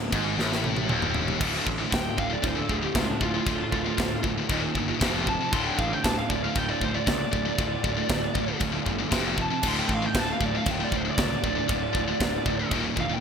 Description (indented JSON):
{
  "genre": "heavy metal",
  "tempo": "117 BPM",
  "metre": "4/4",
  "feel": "straight",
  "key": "D minor",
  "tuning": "A4 = 438 Hz",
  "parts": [
    { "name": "fuzz guitar", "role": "riff", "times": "0.0-13.2 s", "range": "D2 to F4", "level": "-33 LUFS", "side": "equal", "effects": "distortion" },
    { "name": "heavy high-gain guitar", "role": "riff", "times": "0.0-13.2 s", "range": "D2 to F3", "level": "-30 LUFS", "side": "left 9 dB", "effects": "distortion" },
    { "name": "tight distorted guitar", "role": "riff", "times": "0.0-13.2 s", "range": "D2 to F3", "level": "-33 LUFS", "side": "right 9 dB", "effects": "distortion" },
    { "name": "fuzz picked electric bass", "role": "bass", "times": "0.0-13.1 s", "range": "D1 to C#2", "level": "-32 LUFS", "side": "equal", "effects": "overdrive" },
    { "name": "tight metal drum kit", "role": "drums", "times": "0.1-13.1 s", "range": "china cymbal, crash cymbal, kick drum, ride cymbal, snare drum, toms", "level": "-29 LUFS", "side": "equal", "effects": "gated reverb" },
    { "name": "bluesy overdriven lead guitar", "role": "melody", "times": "1.9-13.2 s", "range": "D4 to C6", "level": "-30 LUFS", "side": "right 1 dB", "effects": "distortion" }
  ],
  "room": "moderate lush hall reverb, RT60 2.1 s",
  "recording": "bright 1980s-style digital production",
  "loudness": "-23 LUFS",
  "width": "side -6 dB against mid",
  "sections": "0.0-1.4 A section; 1.4-13.2 B section",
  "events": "drum fill 0.4-1.4; lead electric guitar solo 1.4-13.2",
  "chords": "0.0 N.C.; 1.4 Dm; 4.5 Eb5; 5.0 F5; 5.5 Dm; 9.1 F5; 9.6 Dm"
}